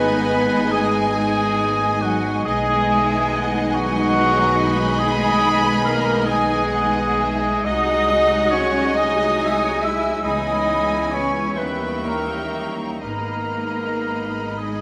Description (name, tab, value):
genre	classical, slow romantic movement for symphony orchestra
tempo	38-48 BPM (dotted quarters)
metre	12/8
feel	rubato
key	G# minor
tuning	A4 = 440 Hz
part	warm symphonic violin section	melody	0.0-14.8 s	D#5 to B5	-32 LUFS	equal	none
part	bright flute section	second line	0.0-14.8 s	F#5 to E6	-29 LUFS	equal	none
part	clear clarinet	second line	0.0-14.8 s	F#4 to E5	-26 LUFS	equal	none
part	warm oboe	second line	0.0-14.8 s	F#4 to E5	-30 LUFS	equal	none
part	warm symphonic violin section	second line	0.0-14.8 s	D#5 to C#6	-31 LUFS	equal	none
part	rich symphonic viola section	accompaniment	0.0-14.8 s	G3 to F#4	-30 LUFS	equal	none
part	dark trombone section	sustained chords	0.0-14.8 s	D#3 to G#3	-32 LUFS	equal	none
part	mellow French horn section	sustained chords	0.0-14.8 s	G#3 to D#4	-31 LUFS	equal	none
part	rich symphonic cello section	bass	0.0-14.8 s	F#3 to E4	-29 LUFS	equal	none
part	rich symphonic double bass section	bass	0.0-14.8 s	G#1 to D#2	-32 LUFS	equal	none
room	wet recital hall reverb, RT60 1.4 s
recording	none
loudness	-20 LUFS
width	mono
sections	0.0-14.8 A section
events	none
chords	0.0 G#m; 2.5 G#m/B; 7.7 G#7/B#; 10.2 C#m7; 11.6 D#7b9; 13.0 G#m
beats	1.15 | 2.46 3.74 5.01 6.26 | 7.65 8.95 10.25 11.57 | 13.03 14.59